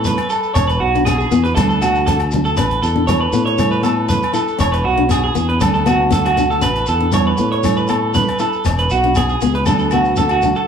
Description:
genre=highlife guitar band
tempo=119 BPM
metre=4/4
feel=straight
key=A major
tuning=A4 = 440 Hz
part: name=electric guitar through a small old amp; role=arpeggios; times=0.0-10.7 s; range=F#4 to C#5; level=-17 LUFS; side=right 2 dB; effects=spring reverb
part: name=fingered electric bass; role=bass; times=0.0-10.5 s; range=E1 to A2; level=-20 LUFS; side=equal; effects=none
part: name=shekere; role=percussion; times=0.0-10.6 s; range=none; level=-24 LUFS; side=left 2 dB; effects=none
part: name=nylon-string guitar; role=accompaniment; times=0.1-10.6 s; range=B3 to E4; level=-21 LUFS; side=left 6 dB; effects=none
part: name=cajon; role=drums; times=0.1-9.7 s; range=none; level=-29 LUFS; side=right 1 dB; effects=none
part: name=congas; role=percussion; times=0.1-10.6 s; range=none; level=-23 LUFS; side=right 5 dB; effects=none
part: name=agogo bells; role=percussion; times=0.2-10.4 s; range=none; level=-28 LUFS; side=left 9 dB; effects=none
room=moderate large studio reverb, RT60 0.9 s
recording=band playing live in one room, lossy compression artefacts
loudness=-13 LUFS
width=side -7 dB against mid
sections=0.0-10.7 A section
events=kick and snare drop out 9.7-10.7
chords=0.0 A; 0.6 E; 1.6 D; 2.6 A; 4.6 E; 5.6 D; 6.6 A; 8.7 E; 9.7 D

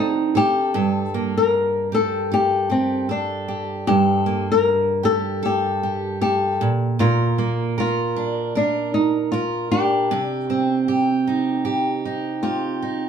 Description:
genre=acoustic pop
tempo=77 BPM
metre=4/4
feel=swing 60% on 16ths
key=G minor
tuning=A4 = 441 Hz
part: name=flamenco guitar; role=melody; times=0.0-13.1 s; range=C4 to Bb4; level=-20 LUFS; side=left 3 dB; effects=none
part: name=picked steel-string acoustic guitar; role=accompaniment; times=0.0-13.1 s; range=G2 to Bb4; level=-22 LUFS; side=right 4 dB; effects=none
room=moderate small room ambience, RT60 0.5 s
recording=band playing live in one room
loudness=-18 LUFS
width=side -7 dB against mid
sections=0.7-13.1 A section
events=none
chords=0.0 D7; 0.7 Gmadd9; 6.6 Bb; 10.1 Cm

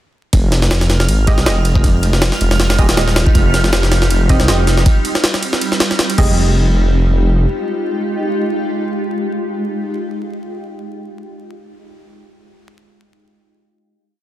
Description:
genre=drum and bass, jungle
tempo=159 BPM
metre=4/4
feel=swing 55% on 16ths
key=F minor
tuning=A4 = 440 Hz
part: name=granular cloud pad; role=sustained chords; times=1.6-10.2 s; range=G3 to G4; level=-21 LUFS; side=equal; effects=built-in reverb
part: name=detuned saw bass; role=bass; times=0.3-7.5 s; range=Eb1 to C2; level=-14 LUFS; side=equal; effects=none
part: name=jungle sampler-style drum kit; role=drums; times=0.3-6.3 s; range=crash cymbal, kick drum, ride cymbal, snare drum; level=-15 LUFS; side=equal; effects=studio reverb
part: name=twinkling granular texture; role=texture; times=0.8-4.9 s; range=F6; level=-26 LUFS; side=right 4 dB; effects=built-in reverb
part: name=filtered dub chord stab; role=stabs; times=1.3-10.6 s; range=Ab3 to Eb5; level=-24 LUFS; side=right 3 dB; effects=chorus, vintage 12-bit sampler grit, dub echo
room=light reverb, digital ambience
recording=dense, heavily limited modern master, vinyl crackle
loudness=-12 LUFS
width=side -14 dB against mid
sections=0.3-6.4 drop; 6.4-9.4 final hit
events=drop 0.3-6.4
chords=0.3 Fm9; 3.4 Cm/F; 6.2 Fm9

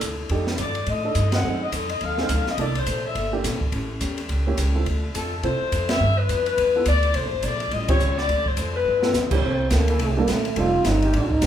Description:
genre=jazz, big band swing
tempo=211 BPM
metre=4/4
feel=swing 60% on 8ths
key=unclear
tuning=A4 = 440 Hz
part: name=picked steel-string acoustic guitar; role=accompaniment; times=0.0-11.5 s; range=F2 to D5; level=-34 LUFS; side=left 3 dB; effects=none
part: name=upright bass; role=bass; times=0.0-11.5 s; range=F1 to C3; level=-24 LUFS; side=equal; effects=none
part: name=open jazz drum kit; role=drums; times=0.0-11.5 s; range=crash cymbal, hi-hat, kick drum, ride cymbal, snare drum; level=-27 LUFS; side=equal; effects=none
part: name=warm baby grand piano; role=accompaniment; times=0.3-11.4 s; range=C3 to A4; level=-28 LUFS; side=right 5 dB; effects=none
part: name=mellow saxophone section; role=melody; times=0.6-9.3 s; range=A4 to F#5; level=-24 LUFS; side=left 4 dB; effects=none
part: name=breathy trombone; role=melody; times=9.4-11.5 s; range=A3 to F4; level=-22 LUFS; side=right 2 dB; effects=none
part: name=mellow trombone section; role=sustained chords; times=9.9-11.4 s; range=Eb3 to A4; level=-32 LUFS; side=equal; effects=none
room=moderate large studio reverb, RT60 0.8 s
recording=band playing live in one room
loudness=-20 LUFS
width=side -10 dB against mid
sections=0.0-9.4 A section; 9.4-11.5 B section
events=band accent 1.3, 5.9, 7.9; drum fill 8.8; trombone solo 9.4-11.5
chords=0.3 F13; 1.4 F#dim7; 2.6 C13; 3.7 A7b9; 4.9 Dm7; 6.0 G13; 7.1 C13; 7.7 A7alt; 8.3 Dm7; 8.8 G13; 9.4 C13; 10.6 F13

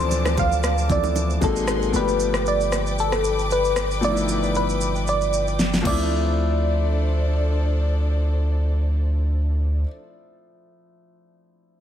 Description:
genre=amapiano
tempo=115 BPM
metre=4/4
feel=swing 55% on 16ths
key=D dorian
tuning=A4 = 440 Hz
part: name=glassy wavetable pluck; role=melody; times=0.0-9.9 s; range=A4 to F5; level=-24 LUFS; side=equal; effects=chorus, tape echo
part: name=clear grand piano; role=accompaniment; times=0.0-11.8 s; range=E3 to A4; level=-27 LUFS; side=left 2 dB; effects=none
part: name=warm studio string section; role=sustained chords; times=0.0-9.8 s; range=A#3 to D6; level=-31 LUFS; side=left 2 dB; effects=none
part: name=punchy sub bass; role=bass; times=0.0-9.8 s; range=G1 to D2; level=-22 LUFS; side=equal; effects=none
part: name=smooth R&B drum kit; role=drums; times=0.0-6.0 s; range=crash cymbal, kick drum, rim click, shaker, snare drum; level=-26 LUFS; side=equal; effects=none
part: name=downlifter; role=sound effects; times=0.0-1.9 s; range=none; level=-43 LUFS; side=right 1 dB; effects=none
part: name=bongos and congas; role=percussion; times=0.1-1.6 s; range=none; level=-33 LUFS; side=right 9 dB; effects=none
room=light reverb, digital ambience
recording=heavily compressed radio sound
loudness=-19 LUFS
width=side -10 dB against mid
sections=0.0-6.1 A section; 6.1-10.3 B section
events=drum fill 5.6-6.1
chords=0.0 Dm7; 1.4 G#9; 1.9 G7; 5.9 Dm7

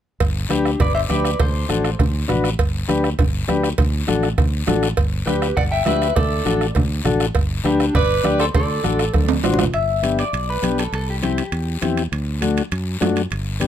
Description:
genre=latin, cumbia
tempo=201 BPM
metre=4/4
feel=straight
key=G major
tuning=A4 = 440 Hz
part: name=fingered electric bass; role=bass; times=0.2-13.7 s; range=G1 to F#2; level=-23 LUFS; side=equal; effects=none
part: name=bombo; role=percussion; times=0.2-9.7 s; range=none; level=-22 LUFS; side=right 2 dB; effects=none
part: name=congas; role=percussion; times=0.2-13.7 s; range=none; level=-26 LUFS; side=left 2 dB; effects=none
part: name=cowbell and timbales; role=percussion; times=0.2-13.7 s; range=none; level=-25 LUFS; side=right 7 dB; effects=none
part: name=guiro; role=percussion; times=0.2-13.7 s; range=none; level=-32 LUFS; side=left 7 dB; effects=none
part: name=clean electric guitar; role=melody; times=0.5-2.0, 5.3-11.9 s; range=D4 to G5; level=-23 LUFS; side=left 2 dB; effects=spring reverb
part: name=combo organ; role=accompaniment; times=0.5-13.7 s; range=A3 to D5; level=-21 LUFS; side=left 4 dB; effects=none
part: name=clear clarinet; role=second line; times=5.3-9.4 s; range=D4 to E5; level=-25 LUFS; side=right 5 dB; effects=none
room=little or no reverb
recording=close, detailed microphones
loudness=-17 LUFS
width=side -10 dB against mid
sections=0.2-9.7 A section; 9.7-13.7 B section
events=drum fill 9.1-9.7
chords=0.2 G; 1.4 D7; 2.6 G; 3.8 D; 5.0 G; 6.2 D; 7.4 G; 8.5 D7; 9.7 G; 10.9 C; 12.1 D

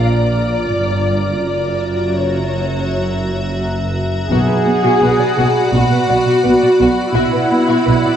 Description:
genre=cinematic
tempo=84 BPM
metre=4/4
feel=straight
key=B dorian from 4.3 s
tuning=A4 = 440 Hz
part: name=muted symphonic violin section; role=melody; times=0.0-8.2 s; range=C#5 to F#5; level=-24 LUFS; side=left 5 dB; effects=none
part: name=icy glass pad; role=sustained chords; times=0.0-8.2 s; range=E#4 to B5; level=-21 LUFS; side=equal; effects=chorus, built-in reverb
part: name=muted symphonic cello section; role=bass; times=0.0-8.1 s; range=F#2 to B2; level=-21 LUFS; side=right 2 dB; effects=none
part: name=muted symphonic double bass section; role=bass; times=0.0-7.9 s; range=F#1 to B1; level=-22 LUFS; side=right 2 dB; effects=none
part: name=muted studio violin section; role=second line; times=4.3-8.2 s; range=F#4 to F#5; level=-20 LUFS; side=left 3 dB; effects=none
part: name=muted symphonic viola section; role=accompaniment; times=4.3-8.2 s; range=E4 to G#4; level=-15 LUFS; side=right 2 dB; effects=none
part: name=muted symphonic cello section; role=riff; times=4.3-8.1 s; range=B2 to B3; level=-19 LUFS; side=right 1 dB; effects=none
part: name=timpani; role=percussion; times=4.3-5.3 s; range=B2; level=-22 LUFS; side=left 1 dB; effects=none
room=moderate scoring stage reverb, RT60 1.5 s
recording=worn, warbling old tape, cassette tape, warbly pitch drift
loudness=-13 LUFS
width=side -9 dB against mid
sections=0.0-4.3 A section; 4.3-8.2 B section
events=none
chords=0.0 A#; 1.4 F#7; 4.3 Bm

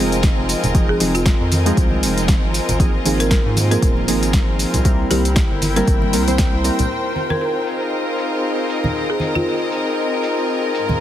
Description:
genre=deep house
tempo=117 BPM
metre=4/4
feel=swing 57% on 16ths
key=F minor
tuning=A4 = 438 Hz
part: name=airy breathy pad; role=sustained chords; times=0.0-11.0 s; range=C4 to Ab5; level=-26 LUFS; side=left 1 dB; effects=chorus, sidechain pumping
part: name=warm analog keys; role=stabs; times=0.0-6.9 s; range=F3 to C5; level=-21 LUFS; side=right 1 dB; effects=chorus, sidechain pumping, tape echo
part: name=round analog bass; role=bass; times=0.0-6.9 s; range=Eb1 to Ab2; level=-21 LUFS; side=equal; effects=sidechain pumping
part: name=dark chamber string section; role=texture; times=0.0-11.0 s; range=Ab2 to G5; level=-23 LUFS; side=left 1 dB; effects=sidechain pumping
part: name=deep house drum kit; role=drums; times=0.1-11.0 s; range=hi-hat, snare drum, tambourine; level=-24 LUFS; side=equal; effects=overdrive, low-pass filter on hats, low-pass filter on perc, low-pass filter on snare, low-pass filter on room
part: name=electronic kick drum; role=drums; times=0.2-6.5 s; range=none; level=-17 LUFS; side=equal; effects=overdrive
part: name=congas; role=percussion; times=0.6-11.0 s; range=none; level=-25 LUFS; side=right 2 dB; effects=none
part: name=folk marimba with hard mallets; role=melody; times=0.9-9.9 s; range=F4 to Bb4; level=-26 LUFS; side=right 1 dB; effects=tape echo
room=light reverb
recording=heavily compressed radio sound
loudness=-15 LUFS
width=side -11 dB against mid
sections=0.0-6.9 A section; 6.9-11.0 B section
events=none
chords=0.0 Fm7; 2.5 Ab69; 4.8 C7; 6.9 Fm7

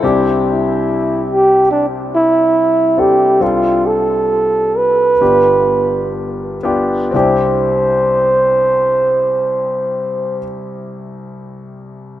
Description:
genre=pop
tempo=60-73 BPM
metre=4/4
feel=straight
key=C major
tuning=A4 = 438 Hz
part: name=warm concert grand piano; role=accompaniment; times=0.0-12.2 s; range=G1 to A4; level=-18 LUFS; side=left 3 dB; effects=none
part: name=picked steel-string acoustic guitar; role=arpeggios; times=0.0-0.6 s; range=C4 to A4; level=-36 LUFS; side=right 1 dB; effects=none
part: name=breathy flugelhorn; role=melody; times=0.5-10.4 s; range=D4 to C5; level=-13 LUFS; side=right 1 dB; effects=none
room=moderate lush hall reverb, RT60 2.6 s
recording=rough home demo mix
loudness=-12 LUFS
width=side -13 dB against mid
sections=0.0-7.1 A section; 7.1-11.2 B section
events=slowing down 0.0-7.1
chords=0.0 Cadd9; 3.4 Dm7/C; 5.2 G7; 7.1 Cadd9

